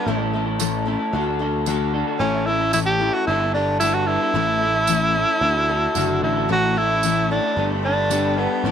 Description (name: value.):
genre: folk rock and heartland rock.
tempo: 112 BPM.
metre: 4/4.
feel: straight.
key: A mixolydian.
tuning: A4 = 440 Hz.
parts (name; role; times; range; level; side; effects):
breathy tenor saxophone; melody; 0.0-8.7 s; B3 to G4; -20 LUFS; right 1 dB; none.
picked steel-string acoustic guitar; accompaniment; 0.0-8.7 s; A2 to A4; -26 LUFS; left 12 dB; none.
electric guitar through a small old amp; riff; 0.0-8.7 s; A2 to A4; -25 LUFS; right 1 dB; lush chorus.
picked electric bass; bass; 0.1-8.7 s; F#1 to D2; -26 LUFS; right 1 dB; none.
tambourine; percussion; 0.6-8.2 s; none; -29 LUFS; right 17 dB; none.
warm studio string section; sustained chords; 6.5-8.7 s; A4 to C#6; -35 LUFS; left 2 dB; none.
room: light reverb, small room ambience.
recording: 1960s-style stereo with parts hard left and right.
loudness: -18 LUFS.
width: side -8 dB against mid.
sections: 0.0-8.7 A section.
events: none.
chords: 0.1 A; 1.1 D; 2.2 A; 3.3 Gadd9; 4.3 A; 5.4 D; 6.5 A; 7.6 Gadd9.